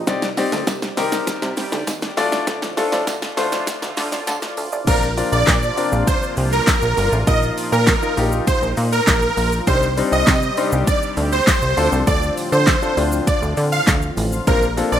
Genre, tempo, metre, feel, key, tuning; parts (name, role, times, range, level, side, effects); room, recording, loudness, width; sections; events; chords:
dance-pop; 100 BPM; 4/4; straight; Bb major; A4 = 440 Hz
sweeping resonant pad; sustained chords; 0.0-15.0 s; A2 to D5; -28 LUFS; equal; chorus, sidechain pumping
plucky analog bass; bass; 0.0-15.0 s; G1 to D3; -22 LUFS; equal; sidechain pumping
clear baby grand piano; accompaniment; 0.1-15.0 s; G3 to D5; -23 LUFS; left 4 dB
soft round pluck; arpeggios; 0.1-4.8 s; D3 to D5; -33 LUFS; right 4 dB
pop drum kit; drums; 0.1-15.0 s; crash cymbal, handclaps, hi-hat, kick drum, shaker, snare drum; -20 LUFS; equal; overdrive
tambourine; percussion; 0.4-14.9 s; -37 LUFS; right 6 dB
supersaw chords; melody; 4.9-15.0 s; Bb4 to F5; -20 LUFS; right 2 dB; sidechain pumping
light reverb; rough home demo mix, high-pass filter; -16 LUFS; side -10 dB against mid
0.0-4.9 A section; 4.9-15.0 B section
build-up 0.0-4.9; drum fill 0.0-4.9; drop 4.9-15.0
0.1 Cmadd9; 2.2 Dm; 4.9 Bbadd9; 7.3 Ebsus2/Bb; 9.7 Cmadd9; 11.8 Dm; 14.5 Bbadd9